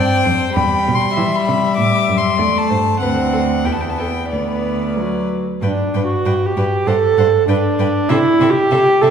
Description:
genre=quick classical-period movement for string quartet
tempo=97 BPM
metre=2/4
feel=rubato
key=G major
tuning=A4 = 440 Hz
part: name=rich violin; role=melody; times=0.0-9.1 s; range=D5 to D6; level=-21 LUFS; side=left 5 dB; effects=none
part: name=rich violin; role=second line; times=0.0-9.1 s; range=G4 to G5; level=-24 LUFS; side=left 2 dB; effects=none
part: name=warm viola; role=accompaniment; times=0.0-9.1 s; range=F#3 to A4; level=-17 LUFS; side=right 2 dB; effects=none
part: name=rich cello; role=bass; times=0.0-9.1 s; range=D2 to E3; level=-20 LUFS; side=right 1 dB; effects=none
room=wet concert hall reverb, RT60 1.8 s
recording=heard from further back in the room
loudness=-14 LUFS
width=side -7 dB against mid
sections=0.0-5.6 A section; 5.6-9.1 B section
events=none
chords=0.0 C5; 0.6 Em; 1.8 A5; 3.0 D7; 3.7 Em; 4.3 Bm/D; 5.0 D; 5.6 G; 6.9 Gsus24; 7.5 G; 8.1 Am/C

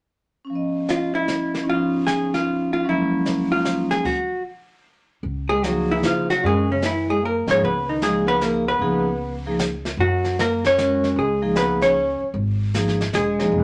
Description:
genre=jazz, small-group swing and bop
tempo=152 BPM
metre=3/4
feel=swing 65% on 8ths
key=Db mixolydian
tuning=A4 = 436 Hz
part: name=vibraphone with medium hard mallets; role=accompaniment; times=0.4-13.5 s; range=F3 to Eb5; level=-26 LUFS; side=equal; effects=none
part: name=jazz brush drum kit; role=drums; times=0.5-13.6 s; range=brushed snare drum, crash cymbal, hi-hat, kick drum, snare drum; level=-32 LUFS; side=equal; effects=none
part: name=vintage hollow-body jazz guitar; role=melody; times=0.9-13.6 s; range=Db4 to Db5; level=-24 LUFS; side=equal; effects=none
part: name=upright bass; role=bass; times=5.2-13.6 s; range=Fb1 to Db3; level=-29 LUFS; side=equal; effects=none
part: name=warm alto saxophone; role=second line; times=5.5-13.6 s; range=Db3 to Db4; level=-28 LUFS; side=equal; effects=none
room=moderate studio reverb, RT60 0.7 s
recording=none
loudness=-21 LUFS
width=mono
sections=0.5-5.2 A section; 5.2-13.6 B section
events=stop 4.1-5.2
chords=0.5 Db9; 2.9 Gbmaj7; 4.1 N.C.; 5.2 Db; 6.4 Gb; 7.6 Db7; 10.0 Gb; 11.2 Db

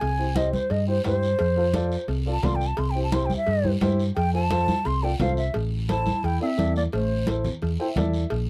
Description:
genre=latin, cumbia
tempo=174 BPM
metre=4/4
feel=straight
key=unclear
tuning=A4 = 440 Hz
part: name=bansuri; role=melody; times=0.0-7.3 s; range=C5 to C6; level=-29 LUFS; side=equal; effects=none
part: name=hollow-body short-scale fingered electric bass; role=bass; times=0.0-8.5 s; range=A1 to G2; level=-28 LUFS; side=equal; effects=none
part: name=congas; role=percussion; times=0.0-8.5 s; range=none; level=-32 LUFS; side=equal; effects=none
part: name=cowbell and timbales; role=percussion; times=0.0-8.5 s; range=none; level=-37 LUFS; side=equal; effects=none
part: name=guiro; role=percussion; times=0.0-8.5 s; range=none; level=-46 LUFS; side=equal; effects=none
part: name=dark upright piano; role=accompaniment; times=0.2-8.3 s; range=E4 to G5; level=-32 LUFS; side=equal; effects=none
part: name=breathy clarinet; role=second line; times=5.9-7.3 s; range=A3 to E4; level=-33 LUFS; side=equal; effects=none
room=little or no reverb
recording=dark, warm production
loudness=-24 LUFS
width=mono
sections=0.0-5.5 A section; 5.5-8.5 B section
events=bansuri solo 0.0-5.5; upright piano fill 7.6-8.3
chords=0.0 C; 1.4 F; 2.8 C; 4.2 F; 5.5 Am

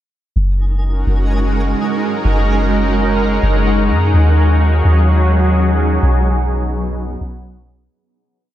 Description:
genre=hip hop, atmospheric cloud-rap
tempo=127 BPM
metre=4/4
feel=half-time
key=F# major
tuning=A4 = 440 Hz
part: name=granular cloud pad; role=sustained chords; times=0.9-7.9 s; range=F#3 to A#4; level=-17 LUFS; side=equal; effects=built-in reverb, wide subtle chorus
part: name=soft 808-style bass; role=bass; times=0.4-7.9 s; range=F#1 to F#2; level=-14 LUFS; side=equal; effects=none
part: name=twinkling granular texture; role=texture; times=0.4-7.9 s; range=D#4 to G#5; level=-28 LUFS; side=left 1 dB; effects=built-in reverb
room=moderate lush hall reverb, RT60 3.1 s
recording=dreamy mix soaked in reverb, low-pass filter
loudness=-12 LUFS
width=side -12 dB against mid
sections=0.4-7.9 breakdown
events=filter sweep 0.4-7.9; fade-out 6.0-7.9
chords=0.4 F#69; 4.1 D#m11; 6.0 B69

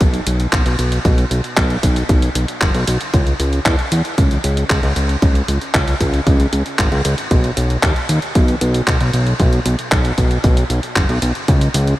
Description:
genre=italo disco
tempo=115 BPM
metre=4/4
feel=straight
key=B major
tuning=A4 = 440 Hz
part: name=fat analog bass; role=bass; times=0.0-11.9 s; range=F#1 to E2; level=-17 LUFS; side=equal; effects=analog delay
part: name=electronic kick drum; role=drums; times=0.0-11.6 s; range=none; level=-16 LUFS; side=equal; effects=studio ambience
part: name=gated 80s digital drum machine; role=drums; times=0.0-12.0 s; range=handclaps, hi-hat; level=-21 LUFS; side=equal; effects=gated reverb, studio ambience
room=light reverb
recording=none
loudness=-14 LUFS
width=side -16 dB against mid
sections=0.0-12.0 A section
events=none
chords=none

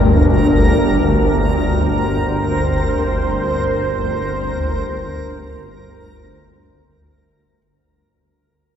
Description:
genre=dark ambient drone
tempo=free time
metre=none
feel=none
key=G minor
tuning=A4 = 440 Hz
part: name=deep dark ambient pad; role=sustained chords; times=0.0-7.6 s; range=G3 to G5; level=-22 LUFS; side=equal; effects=chorus, built-in reverb
part: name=clear concert grand piano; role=arpeggios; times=0.0-7.6 s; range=Bb2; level=-32 LUFS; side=right 1 dB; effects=none
part: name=swarming drone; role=drone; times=0.0-7.7 s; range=G1 to D2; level=-16 LUFS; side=equal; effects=built-in reverb
part: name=backwards swelling texture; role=texture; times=0.0-7.6 s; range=Bb4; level=-24 LUFS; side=left 1 dB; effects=built-in reverb
room=wet huge ambient reverb, RT60 8.3 s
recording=dark, warm production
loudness=-15 LUFS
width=side -9 dB against mid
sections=0.0-7.6 A section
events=fade-out 0.6-7.6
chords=0.0 Gm

